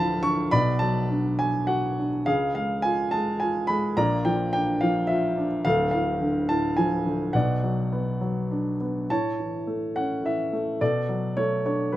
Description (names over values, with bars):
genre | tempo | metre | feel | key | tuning
classical, lyrical solo piano | 106 BPM | 3/4 | rubato | unclear | A4 = 442 Hz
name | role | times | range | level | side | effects
warm grand piano | solo | 0.0-12.0 s | D1 to C#6 | -22 LUFS | equal | none
room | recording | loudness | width
light reverb | close, detailed microphones | -22 LUFS | side -14 dB against mid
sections
0.0-9.1 A section; 9.1-12.0 B section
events
none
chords
0.0 Dm; 0.5 Bm; 2.3 C#; 4.0 Bb; 5.7 Dm; 7.3 Bm; 9.1 A; 10.8 Bm7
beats
| 0.52 1.09 1.67 | 2.25 2.83 3.40 | 3.97 4.54 5.10 | 5.66 6.21 6.77 | 7.34 7.92 8.51 | 9.10 9.68 10.25 | 10.81 11.37 11.92